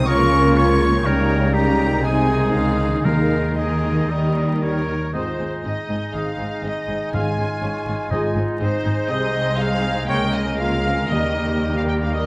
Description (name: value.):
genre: classical, dramatic, fast romantic movement for symphony orchestra.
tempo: 114-124 BPM.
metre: 4/4.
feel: rubato.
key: Ab major.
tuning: A4 = 440 Hz.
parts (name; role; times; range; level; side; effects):
rich symphonic violin section; melody; 0.0-12.3 s; Ab4 to Ab5; -32 LUFS; equal; none.
bright small flute group; second line; 0.0-12.3 s; Bb4 to Db6; -31 LUFS; equal; none.
mellow clarinet; second line; 0.0-12.3 s; Eb4 to C5; -31 LUFS; equal; none.
warm studio violin section; second line; 0.0-12.3 s; Bb3 to Db6; -38 LUFS; equal; none.
mellow bassoon; accompaniment; 0.0-12.3 s; G3 to Bb3; -32 LUFS; equal; none.
warm symphonic viola section; accompaniment; 0.0-12.3 s; Eb3 to Eb4; -32 LUFS; equal; none.
clear trombone section; sustained chords; 0.0-12.3 s; Ab2 to Bb3; -32 LUFS; equal; none.
dark French horn section; sustained chords; 0.0-12.3 s; Bb3 to Bb4; -31 LUFS; equal; none.
concert harp; arpeggios; 0.0-12.3 s; Ab2 to Eb5; -32 LUFS; equal; none.
warm symphonic cello section; bass; 0.0-12.3 s; C2 to Eb3; -29 LUFS; equal; none.
warm symphonic double bass section; bass; 0.0-12.3 s; Ab1 to Eb2; -27 LUFS; equal; none.
warm oboe; second line; 0.1-12.3 s; Eb4 to Eb5; -31 LUFS; equal; none.
timpani; percussion; 3.1-3.8, 7.1-11.9 s; Ab2 to Eb3; -29 LUFS; equal; none.
clear trumpet; stabs; 5.1-12.3 s; Db5 to F5; -34 LUFS; equal; none.
room: moderate scoring stage reverb, RT60 1.8 s.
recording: vinyl crackle.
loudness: -20 LUFS.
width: mono.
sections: 0.0-5.1 A section; 5.1-12.3 B section.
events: none.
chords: 0.1 Bbm/Db; 1.1 Eb7/Db; 2.0 Ab/C; 3.0 Ebsus4; 4.1 Eb; 5.1 Ab; 7.1 Db/Ab; 8.1 Ab; 9.1 Ab/C; 10.1 Db6; 11.1 Eb.